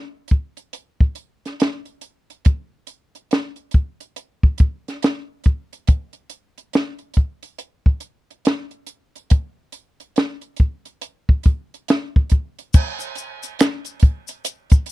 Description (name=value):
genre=R&B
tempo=70 BPM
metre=4/4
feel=swing 62% on 16ths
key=none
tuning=none
part: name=compact cocktail drum kit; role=drums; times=0.3-14.9 s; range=crash cymbal, hi-hat, kick drum, snare drum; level=-15 LUFS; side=equal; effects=none
part: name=tube shaker and finger snaps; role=percussion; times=12.7-14.9 s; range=none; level=-30 LUFS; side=equal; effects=none
room=little or no reverb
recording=dry, close 1970s-style studio recording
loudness=-18 LUFS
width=side -19 dB against mid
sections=0.0-12.7 A section; 12.7-14.9 B section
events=none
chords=none